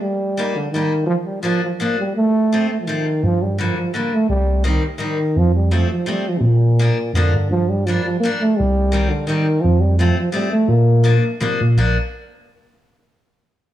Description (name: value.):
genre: alpine folk, alpine dance band.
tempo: 169 BPM.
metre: 3/4.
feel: rubato.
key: Bb major.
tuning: A4 = 440 Hz.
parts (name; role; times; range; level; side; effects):
dark euphonium; melody; 0.0-11.4 s; Bb2 to Bb3; -19 LUFS; right 1 dB; analog delay.
picked steel-string acoustic guitar; accompaniment; 0.4-12.0 s; D3 to Eb4; -24 LUFS; left 3 dB; none.
mellow tine electric piano; bass; 3.2-12.0 s; Bb1 to C3; -16 LUFS; equal; none.
room: light reverb, small room ambience.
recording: none.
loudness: -15 LUFS.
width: side -13 dB against mid.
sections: 0.0-7.5 A section; 7.5-11.8 B section; 11.8-12.9 C section.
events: none.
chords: 0.0 Eb; 1.1 Bb; 2.2 F; 3.2 Gm; 4.3 Cm; 5.4 F; 6.4 Bb; 7.5 Gm; 8.6 Cm; 9.6 F; 10.7 Bb.